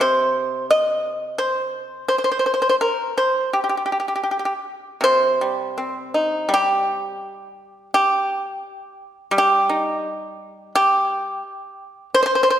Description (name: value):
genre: chinese traditional, Chinese solo plucked strings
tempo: 83 BPM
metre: 4/4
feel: uneven beats, rubato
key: unclear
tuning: A4 = 440 Hz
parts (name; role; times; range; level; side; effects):
- pipa; solo; 0.0-12.6 s; C3 to Eb5; -18 LUFS; equal; none
room: wet scoring stage reverb, RT60 1.7 s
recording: none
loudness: -18 LUFS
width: side -10 dB against mid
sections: 0.0-5.0 A section; 5.0-12.6 B section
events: none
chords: none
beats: 0.01 0.69 1.37 | 2.07 2.78 3.49 4.26 | 5.04 5.78 6.51 7.22 | 7.92 8.64 9.34 10.04 | 10.74 11.43 12.12